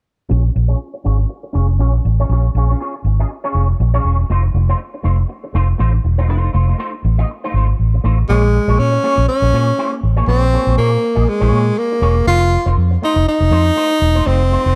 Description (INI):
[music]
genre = disco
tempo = 120 BPM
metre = 4/4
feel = swing 56% on 16ths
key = Bb minor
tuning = A4 = 440 Hz
[part]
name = electric guitar with an envelope filter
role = accompaniment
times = 0.3-14.8 s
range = A3 to Eb5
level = -26 LUFS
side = equal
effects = ensemble chorus, low-pass filter
[part]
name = vintage muted fingered electric bass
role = bass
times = 0.3-14.7 s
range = E1 to Bb2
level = -16 LUFS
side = equal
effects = none
[part]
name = breathy tenor saxophone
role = melody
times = 8.3-14.8 s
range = Ab3 to F4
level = -18 LUFS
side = equal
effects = slapback echo
[sound]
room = light reverb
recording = dark, warm production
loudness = -16 LUFS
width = mono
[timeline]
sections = 0.3-8.3 A section; 8.3-14.8 B section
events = filter sweep on clean electric guitar 0.3-8.3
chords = 0.3 Bbm7; 4.3 F7; 8.3 Bbm7; 12.3 F7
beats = | 0.30 0.80 1.30 1.80 | 2.30 2.79 3.29 3.79 | 4.29 4.79 5.29 5.79 | 6.29 6.79 7.29 7.79 | 8.28 8.78 9.28 9.78 | 10.28 10.78 11.28 11.77 | 12.27 12.77 13.27 13.77 | 14.27